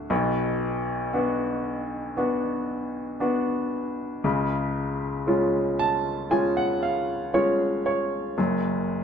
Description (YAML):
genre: pop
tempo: 58 BPM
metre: 4/4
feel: straight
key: unclear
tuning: A4 = 439 Hz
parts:
  - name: clear baby grand piano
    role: solo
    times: 0.0-9.0 s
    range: F#1 to A5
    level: -23 LUFS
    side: equal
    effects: none
room: moderate studio ambience, RT60 0.5 s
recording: band playing live in one room, lossy compression artefacts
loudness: -23 LUFS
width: side -7 dB against mid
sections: 0.0-9.0 A section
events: grand piano fill 5.3-8.4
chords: 0.1 Bm; 4.2 C#; 8.4 N.C.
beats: | 0.11 1.14 2.17 3.21 | 4.24 5.28 6.31 7.35 | 8.38